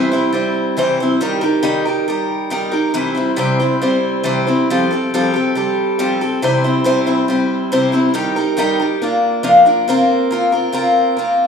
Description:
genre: rock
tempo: 138 BPM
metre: 4/4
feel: straight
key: C mixolydian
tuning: A4 = 440 Hz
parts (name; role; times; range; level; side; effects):
- picked acoustic archtop guitar; solo; 0.0-11.5 s; Bb2 to C5; -14 LUFS; equal; none
room: wet recital hall reverb, RT60 1.4 s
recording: recorded in a church or concert hall, studio ambience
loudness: -14 LUFS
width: side -6 dB against mid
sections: 0.0-9.9 A section; 9.9-11.5 B section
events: none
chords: 0.0 C; 1.2 Eb; 2.9 C; 4.7 Fadd9; 6.4 C; 8.2 Eb; 9.0 Bb; 9.9 Bbsus2

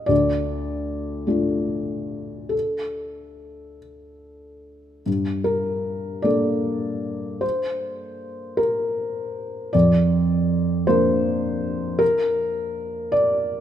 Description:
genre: neoclassical minimalist piano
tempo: 47-53 BPM (dotted quarters)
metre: 6/8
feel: rubato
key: G minor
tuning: A4 = 436 Hz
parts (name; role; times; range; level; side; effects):
- felt-muted upright piano; solo; 0.0-13.6 s; D2 to Eb5; -21 LUFS; equal; none
room: moderate recital hall reverb, RT60 1.7 s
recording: minimal, uncompressed stereo recording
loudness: -20 LUFS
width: side -10 dB against mid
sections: 0.0-5.1 A section; 5.1-13.6 A section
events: none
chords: 0.1 Dm; 5.1 Gmadd9; 9.7 Bb/F

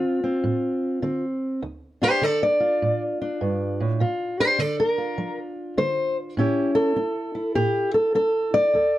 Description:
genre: acoustic country blues, solo or duo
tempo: 101 BPM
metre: 4/4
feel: swing 65% on 8ths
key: D minor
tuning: A4 = 445 Hz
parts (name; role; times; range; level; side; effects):
- fingerpicked steel-string acoustic guitar; solo; 0.0-9.0 s; D2 to D5; -21 LUFS; equal; none
room: light reverb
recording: dark, warm production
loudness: -21 LUFS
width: side -14 dB against mid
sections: 0.0-9.0 A section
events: steel-string acoustic guitar solo 0.0-9.0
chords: 0.0 Dm7; 4.0 Bb; 6.4 A7

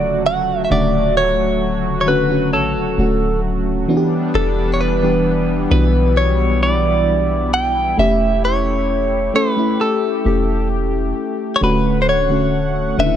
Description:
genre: contemporary R&B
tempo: 66 BPM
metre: 4/4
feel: straight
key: unclear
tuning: A4 = 440 Hz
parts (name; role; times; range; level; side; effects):
- direct-recorded clean electric guitar; melody; 0.0-13.2 s; A4 to G5; -18 LUFS; equal; phaser, analog delay
- mellow FM electric piano; accompaniment; 0.0-13.2 s; C#3 to A4; -20 LUFS; left 1 dB; chorus
- warm analog pad; sustained chords; 0.0-13.2 s; E3 to F#5; -23 LUFS; equal; chorus, tremolo
- soft 808-style bass; bass; 0.0-13.2 s; D1 to B1; -21 LUFS; equal; none
- soft synth bell; texture; 0.0-13.2 s; G4 to B5; -30 LUFS; left 2 dB; chorus, analog delay
room: little or no reverb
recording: dry, gritty hardware recording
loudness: -14 LUFS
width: side -10 dB against mid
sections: 0.0-13.2 A section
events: none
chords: 0.0 Dmaj7; 3.9 Em7; 8.0 A7/E; 11.6 Dmaj7

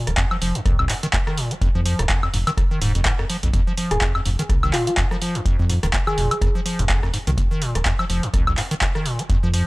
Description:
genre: acid house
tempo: 125 BPM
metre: 4/4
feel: swing 57% on 16ths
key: F minor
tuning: A4 = 440 Hz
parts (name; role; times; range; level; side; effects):
- acid bass, square; riff; 0.0-9.7 s; Eb2 to Ab3; -25 LUFS; equal; lush chorus
- round analog bass; bass; 0.1-9.6 s; Eb1 to F2; -22 LUFS; equal; tube saturation, sidechain pumping
- punchy analog drum machine; drums; 0.1-9.6 s; handclaps, hi-hat, rim click, woodblock; -24 LUFS; equal; none
- electronic kick drum; drums; 0.2-9.4 s; none; -22 LUFS; equal; overdrive
- soft struck synth lead; melody; 3.9-6.6 s; F4 to Ab4; -27 LUFS; equal; chorus, analog delay
room: little or no reverb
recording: dry, gritty hardware recording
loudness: -18 LUFS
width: side -22 dB against mid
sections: 0.0-9.7 A section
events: none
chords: 0.0 F5

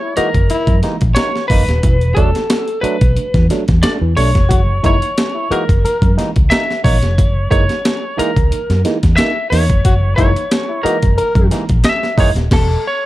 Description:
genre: funk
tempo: 90 BPM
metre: 4/4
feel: straight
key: F# mixolydian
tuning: A4 = 440 Hz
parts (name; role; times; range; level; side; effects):
- lightly driven lead guitar; melody; 0.0-13.1 s; A4 to E5; -19 LUFS; equal; none
- warm trombone; second line; 0.0-11.4 s; E4 to A#4; -22 LUFS; left 4 dB; none
- barky tine electric piano; stabs; 0.2-12.3 s; E3 to D#4; -21 LUFS; right 2 dB; phaser
- vintage muted fingered electric bass; bass; 0.2-12.7 s; D#1 to F#2; -15 LUFS; equal; none
- breakbeat sampler-style drum kit; drums; 0.2-12.7 s; crash cymbal, hi-hat, kick drum, snare drum; -16 LUFS; equal; overdrive
room: little or no reverb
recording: dark, warm production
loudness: -12 LUFS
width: side -16 dB against mid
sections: 0.0-13.1 A section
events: band accent 12.5-13.1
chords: 0.0 F#13; 1.8 E9sus4; 4.5 F#13; 12.5 Esus4

